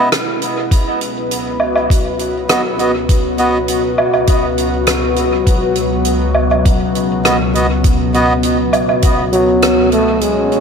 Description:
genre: ambient dub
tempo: 101 BPM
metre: 4/4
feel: straight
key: unclear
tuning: A4 = 440 Hz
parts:
  - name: warbly tape-like pad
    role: sustained chords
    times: 0.0-10.6 s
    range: C#2 to B4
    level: -16 LUFS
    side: left 1 dB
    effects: chorus, built-in reverb, phaser
  - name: melodica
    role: stabs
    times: 0.0-3.6, 7.2-8.3 s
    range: B3 to D#5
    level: -20 LUFS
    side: right 1 dB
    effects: dub echo
  - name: soft-mallet drum kit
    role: drums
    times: 0.1-10.6 s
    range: hi-hat, rim click, woodblock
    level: -19 LUFS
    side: right 1 dB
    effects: dub echo
  - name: electronic kick drum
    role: drums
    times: 0.7-9.2 s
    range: none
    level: -12 LUFS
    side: equal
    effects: none
  - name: mellow trombone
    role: melody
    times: 9.3-10.6 s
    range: F#3 to A3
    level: -13 LUFS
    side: left 1 dB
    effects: dub echo
  - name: wind-like tuned noise texture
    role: texture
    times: 10.3-10.6 s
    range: C#4 to C#5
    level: -20 LUFS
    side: right 3 dB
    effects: built-in reverb
room: moderate huge ambient reverb, RT60 8.7 s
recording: none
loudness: -12 LUFS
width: side -6 dB against mid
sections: 0.0-10.2 A section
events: fade-in on ambient pad 0.0-10.2; band accent 9.6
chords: 0.0 C#m9; 0.7 B5/C#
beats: 0.12 | 0.71 1.31 1.90 2.50 | 3.09 3.68 4.28 4.87 | 5.47 6.06 6.66 7.25 | 7.84 8.44 9.03 9.62 | 10.22

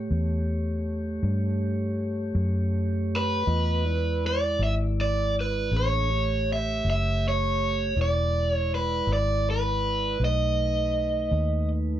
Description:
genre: slow blues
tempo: 54 BPM (dotted quarters)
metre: 12/8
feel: straight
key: E mixolydian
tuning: A4 = 438 Hz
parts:
  - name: mellow tonewheel organ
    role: sustained chords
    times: 0.0-12.0 s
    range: G#3 to D#5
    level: -32 LUFS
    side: equal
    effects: slow rotary speaker
  - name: vintage muted fingered electric bass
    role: bass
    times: 0.0-12.0 s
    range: E1 to G2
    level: -26 LUFS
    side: equal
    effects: none
  - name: overdriven electric guitar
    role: melody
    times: 3.2-11.7 s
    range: B4 to E5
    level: -26 LUFS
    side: right 2 dB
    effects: none
room: moderate club reverb, RT60 0.6 s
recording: none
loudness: -23 LUFS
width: side -11 dB against mid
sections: 0.0-12.0 A section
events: none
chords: 0.0 A7; 3.5 E7; 5.7 A7; 8.0 E7; 10.2 B7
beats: 0.12 1.24 2.36 | 3.48 4.60 5.72 6.84 | 7.96 9.08 10.20 11.32

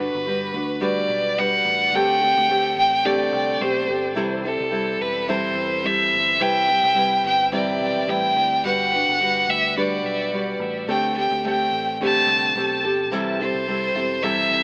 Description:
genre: acoustic pop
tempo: 107 BPM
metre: 4/4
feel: swing 60% on 16ths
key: G major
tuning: A4 = 441 Hz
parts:
  - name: clear violin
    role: melody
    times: 0.0-14.6 s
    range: A4 to A5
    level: -22 LUFS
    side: equal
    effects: tape echo
  - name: nylon-string guitar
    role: accompaniment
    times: 0.0-14.6 s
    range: C3 to B4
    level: -27 LUFS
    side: equal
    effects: tape echo
  - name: vintage muted fingered electric bass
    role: bass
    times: 0.0-14.6 s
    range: E1 to E2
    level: -40 LUFS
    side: equal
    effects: none
room: moderate echo chamber reverb, RT60 2.0 s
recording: echo-heavy mix, AM radio sound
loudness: -21 LUFS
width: mono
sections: 0.0-14.6 A section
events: none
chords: 0.0 Gmaj7; 1.9 D7sus4; 4.2 Am7; 6.4 Cmaj7; 8.6 Gmaj7; 10.9 D7sus4; 13.1 Am7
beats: 0.25 0.81 1.37 | 1.93 2.49 3.05 3.61 | 4.17 4.73 5.29 5.84 | 6.40 6.96 7.52 8.08 | 8.64 9.20 9.76 10.32 | 10.88 11.44 11.99 12.55 | 13.11 13.67 14.23

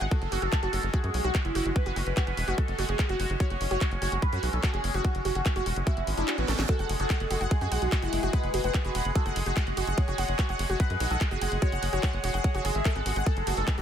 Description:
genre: psychedelic trance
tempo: 146 BPM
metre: 4/4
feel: straight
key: F# minor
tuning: A4 = 442 Hz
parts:
  - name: bubbling stepped-filter texture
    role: sustained chords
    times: 0.0-13.8 s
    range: G#3 to G#4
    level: -35 LUFS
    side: right 1 dB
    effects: chorus, built-in reverb, sidechain pumping
  - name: wide unison pluck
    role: riff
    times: 0.0-13.8 s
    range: E4 to F#5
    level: -34 LUFS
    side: right 1 dB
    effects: auto-pan, sidechain pumping, tape echo
  - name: tight sequencer bass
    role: bass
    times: 0.0-13.8 s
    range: E1 to F#2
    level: -30 LUFS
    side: equal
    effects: none
  - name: garage drum kit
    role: drums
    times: 0.0-13.8 s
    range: handclaps, hi-hat, ride cymbal, snare drum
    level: -36 LUFS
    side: left 1 dB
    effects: none
  - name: overdriven synth lead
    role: melody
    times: 0.1-13.8 s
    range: B3 to F#5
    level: -33 LUFS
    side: equal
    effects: distortion, phaser, sidechain pumping, digital delay
  - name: electronic kick drum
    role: drums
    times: 0.1-13.8 s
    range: none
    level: -26 LUFS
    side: equal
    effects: none
  - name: reverse cymbal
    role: sound effects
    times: 6.1-6.7 s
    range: none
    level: -40 LUFS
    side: right 7 dB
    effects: none
room: little or no reverb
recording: none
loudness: -25 LUFS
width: side -9 dB against mid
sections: 0.0-13.8 A section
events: reverse cymbal 6.1-6.7; kick drops out 6.3-6.7; drum fill 6.5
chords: 0.0 F#5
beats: | 0.11 0.53 0.94 1.35 | 1.76 2.17 2.58 2.99 | 3.40 3.81 4.22 4.63 | 5.05 5.46 5.87 6.28 | 6.69 7.10 7.51 7.92 | 8.33 8.74 9.15 9.57 | 9.98 10.39 10.80 11.21 | 11.62 12.03 12.44 12.85 | 13.27 13.68

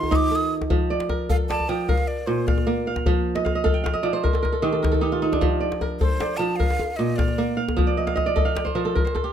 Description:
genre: west african traditional, West African string and xylophone music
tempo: 102 BPM (dotted quarters)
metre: 12/8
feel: straight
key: F mixolydian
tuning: A4 = 445 Hz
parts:
  - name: breathy jazz flute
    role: melody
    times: 0.0-7.6 s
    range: C5 to Eb6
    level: -28 LUFS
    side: right 1 dB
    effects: none
  - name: kora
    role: arpeggios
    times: 0.0-9.3 s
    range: Bb2 to G5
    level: -23 LUFS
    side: right 2 dB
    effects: none
  - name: djembe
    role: percussion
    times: 0.0-9.2 s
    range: none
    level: -24 LUFS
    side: left 2 dB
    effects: none
room: little or no reverb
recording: close, detailed microphones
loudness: -20 LUFS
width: side -9 dB against mid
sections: 0.7-9.3 A section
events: kora fill 3.4-5.4, 7.9-9.3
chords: 0.0 Eb; 0.7 F; 1.9 Bb; 3.1 F; 4.2 N.C.; 5.4 F; 6.6 Bb; 7.8 F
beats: 0.12 | 0.71 1.30 1.88 2.47 | 3.06 3.65 4.24 4.83 | 5.42 6.00 6.59 7.18 | 7.78 8.37 8.96

